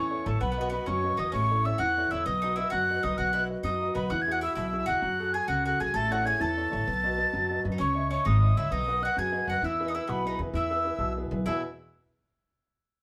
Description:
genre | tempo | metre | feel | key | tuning
celtic folk, Celtic slide | 130 BPM (dotted quarters) | 12/8 | straight | E major | A4 = 440 Hz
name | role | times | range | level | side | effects
mellow hollow mid whistle | melody | 0.0-11.6 s | A5 to A6 | -32 LUFS | equal | none
accordion | second line | 0.0-11.6 s | A4 to A5 | -39 LUFS | equal | none
mandolin | second line | 0.0-11.6 s | A3 to A4 | -38 LUFS | equal | none
clear concert grand piano | accompaniment | 0.0-11.6 s | E2 to G#5 | -36 LUFS | equal | none
upright bass | bass | 0.0-11.6 s | G#1 to F#2 | -33 LUFS | equal | none
room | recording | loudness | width
moderate studio reverb, RT60 0.7 s | band playing live in one room | -28 LUFS | mono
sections
0.0-11.5 A section; 11.5-13.0 B section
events
none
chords
0.4 B; 1.3 A; 2.3 B; 4.1 Eadd9; 5.0 F#madd9; 5.9 A; 6.9 B; 7.8 C#madd9; 8.7 B; 9.6 E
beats
| 0.41 0.87 1.33 1.80 | 2.26 2.72 3.18 3.64 | 4.10 4.56 5.02 5.48 | 5.94 6.40 6.86 7.32 | 7.78 8.24 8.70 9.16 | 9.62 10.08 10.54 11.00 | 11.46

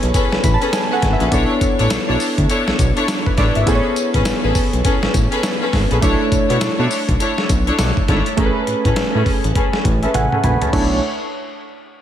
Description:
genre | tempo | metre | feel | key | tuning
R&B, new jack swing | 102 BPM | 4/4 | swing 61% on 16ths | B dorian | A4 = 439 Hz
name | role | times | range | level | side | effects
warm analog keys | accompaniment | 0.0-11.0 s | A3 to B5 | -21 LUFS | right 1 dB | chorus, low-pass filter, slapback echo
fat analog bass | bass | 0.0-11.0 s | G#1 to B2 | -19 LUFS | equal | none
dusty soul sampler-style drum kit | drums | 0.0-10.9 s | crash cymbal, hi-hat, kick drum, snare drum, tambourine, toms | -19 LUFS | equal | none
bright studio string section | stabs | 0.1-11.0 s | C#4 to C#5 | -21 LUFS | left 2 dB | low-pass filter, digital delay, slapback echo
room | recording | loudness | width
moderate lush hall reverb, RT60 2.3 s | big arena sound | -14 LUFS | side -10 dB against mid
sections
0.0-6.0 A section; 6.0-10.7 B section; 10.7-12.0 C section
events
synth keys fill 0.1-1.3, 9.8-10.7; filter sweep 6.0-10.7; drum fill 10.1-10.7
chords
0.0 Amaj9; 1.3 Bm11; 3.7 Amaj9; 6.0 Bm11; 8.4 Amaj9; 10.7 Bm11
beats
0.14 0.73 | 1.32 1.91 2.50 3.08 | 3.67 4.26 4.85 5.44 | 6.02 6.61 7.20 7.79 | 8.38 8.97 9.55 10.14 | 10.73

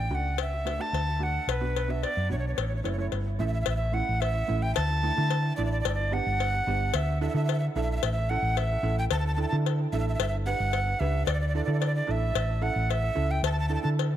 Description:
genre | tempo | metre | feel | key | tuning
calypso | 110 BPM | 4/4 | straight | D major | A4 = 442 Hz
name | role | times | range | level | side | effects
breathy alto recorder | melody | 0.0-13.9 s | B4 to A5 | -31 LUFS | right 1 dB | dub echo
hollow-body short-scale fingered electric bass | bass | 0.0-14.2 s | F#1 to D3 | -28 LUFS | equal | none
steel pan | accompaniment | 0.1-14.1 s | A3 to B4 | -35 LUFS | right 7 dB | dub echo
cowbell | percussion | 0.4-14.1 s | none | -33 LUFS | left 13 dB | none
room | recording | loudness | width
light reverb, small room ambience | echo-heavy mix | -25 LUFS | side -11 dB against mid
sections
0.0-3.7 A section; 3.7-14.2 B section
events
none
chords
0.0 D; 1.5 Bm; 2.6 A; 4.8 Dsus2; 5.9 G; 6.9 Dsus2; 8.0 A; 9.1 Dsus2; 10.2 G; 11.3 Dsus2; 12.4 A; 13.4 Dsus2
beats
0.39 0.94 | 1.49 2.03 2.58 3.13 | 3.68 4.22 4.77 5.31 | 5.86 6.40 6.95 7.49 | 8.03 8.57 9.12 9.66 | 10.20 10.74 11.28 11.82 | 12.36 12.90 13.44 13.98

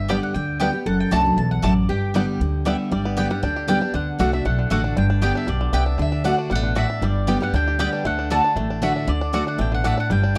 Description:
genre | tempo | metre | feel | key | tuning
bluegrass | 234 BPM | 4/4 | straight | G major | A4 = 441 Hz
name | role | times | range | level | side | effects
mandolin | melody | 0.0-10.4 s | D5 to A5 | -29 LUFS | equal | none
lap resonator guitar | second line | 0.0-2.8 s | G4 to B4 | -35 LUFS | equal | none
picked steel-string acoustic guitar | accompaniment | 0.0-10.4 s | E2 to G4 | -25 LUFS | equal | none
upright bass | bass | 0.0-10.4 s | F#1 to D2 | -26 LUFS | equal | none
bluegrass banjo | melody | 0.1-10.4 s | D3 to G4 | -32 LUFS | equal | none
mandolin | stabs | 0.1-10.4 s | A3 to A5 | -29 LUFS | equal | none
room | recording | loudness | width
small room reverb | dry, close 1970s-style studio recording | -21 LUFS | mono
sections
0.0-2.9 A section; 2.9-10.4 B section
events
none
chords
0.0 G; 0.9 D/F#; 1.9 G; 3.9 D; 5.0 G; 6.0 D; 7.0 G; 8.0 D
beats
0.10 0.35 0.61 | 0.86 1.12 1.38 1.63 | 1.89 2.15 2.40 2.66 | 2.92 3.17 3.43 3.69 | 3.94 4.20 4.46 4.71 | 4.97 5.22 5.48 5.74 | 6.00 6.25 6.51 6.76 | 7.02 7.28 7.54 7.79 | 8.05 8.31 8.56 8.82 | 9.08 9.33 9.59 9.85 | 10.10 10.36

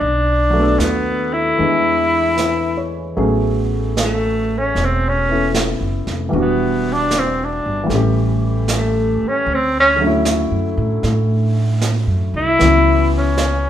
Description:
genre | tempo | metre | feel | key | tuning
jazz | 76 BPM | 4/4 | swing 69% on 8ths | E major, A major from 3.2 s | A4 = 441 Hz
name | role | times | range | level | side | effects
breathy tenor saxophone | melody | 0.0-13.7 s | A3 to E4 | -16 LUFS | left 1 dB | none
warm baby grand piano | accompaniment | 0.0-13.7 s | D3 to C#5 | -20 LUFS | left 1 dB | none
upright bass | bass | 0.0-13.7 s | E1 to A2 | -20 LUFS | right 1 dB | none
vintage brush drum kit | drums | 0.0-13.7 s | brushed snare drum, hi-hat, snare drum | -25 LUFS | right 4 dB | none
room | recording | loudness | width
moderate large studio reverb, RT60 1.0 s | band playing live in one room | -14 LUFS | side -10 dB against mid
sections
0.0-3.2 A section; 3.2-13.7 B section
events
tenor saxophone solo 3.2-13.7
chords
0.0 Bm7; 1.6 E7; 3.2 Amaj13; 6.3 Em9; 7.9 A7; 9.5 Dmaj9; 12.6 C#m7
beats
| 0.01 0.80 1.58 2.38 | 3.17 3.97 4.75 5.54 | 6.33 7.12 7.90 8.69 | 9.47 10.25 11.03 11.81 | 12.59 13.37

